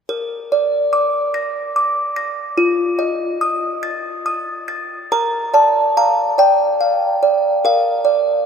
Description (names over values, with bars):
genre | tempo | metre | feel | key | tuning
classical, lullaby for music box | 48 BPM (dotted quarters) | 6/8 | straight | Bb major | A4 = 440 Hz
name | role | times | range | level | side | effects
music box | solo | 0.1-8.5 s | F4 to Bb6 | -15 LUFS | equal | none
room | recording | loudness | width
wet cathedral reverb, RT60 5.8 s | recorded in a church or concert hall | -15 LUFS | side -6 dB against mid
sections
0.1-5.1 A section; 5.1-8.5 B section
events
none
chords
0.1 Bb; 2.6 F7; 5.1 Bb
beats
| 0.10 1.35 | 2.59 3.84 | 5.12 6.38 | 7.62